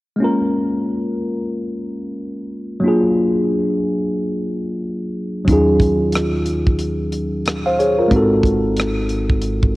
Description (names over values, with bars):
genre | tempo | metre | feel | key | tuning
R&B, neo-soul | 91 BPM | 4/4 | swing 60% on 16ths | Bb minor | A4 = 440 Hz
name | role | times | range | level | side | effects
tine electric piano | accompaniment | 0.2-9.8 s | Gb3 to F5 | -17 LUFS | equal | wide subtle chorus
upright bass | bass | 5.5-9.8 s | Ab1 to Eb2 | -23 LUFS | equal | none
tight funk drum kit | drums | 5.5-9.8 s | hi-hat, kick drum, rim click | -19 LUFS | equal | none
room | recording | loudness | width
light reverb, small room ambience | home recording on cassette | -16 LUFS | side -19 dB against mid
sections
0.2-9.8 A section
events
none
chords
0.2 Bbm7; 2.8 Bb7b13; 5.5 Ebm11; 8.1 Ab7b9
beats
| 0.20 0.86 1.52 2.18 | 2.83 3.50 4.15 4.81 | 5.47 6.13 6.79 7.45 | 8.11 8.77 9.43